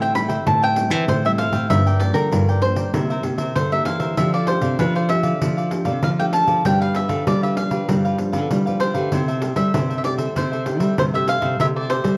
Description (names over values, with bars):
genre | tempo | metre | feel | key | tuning
samba and choro | 97 BPM | 4/4 | straight | C major | A4 = 437 Hz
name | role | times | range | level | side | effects
cavaquinho | melody | 0.0-12.2 s | Bb4 to B5 | -25 LUFS | equal | none
cavaquinho | accompaniment | 0.0-12.2 s | D4 to G5 | -31 LUFS | equal | none
nylon-string guitar | accompaniment | 0.0-12.2 s | G2 to G4 | -30 LUFS | equal | none
nylon-string guitar | bass | 0.0-12.2 s | G2 to G3 | -24 LUFS | equal | none
pandeiro | percussion | 0.0-12.2 s | none | -27 LUFS | equal | none
room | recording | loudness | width
moderate large studio reverb, RT60 1.0 s | worn, warbling old tape, cassette tape, warbly pitch drift | -20 LUFS | mono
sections
0.0-12.2 A section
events
none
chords
0.0 Am7; 1.7 Gm7; 2.9 C7; 4.2 F69; 6.7 G7; 9.1 C6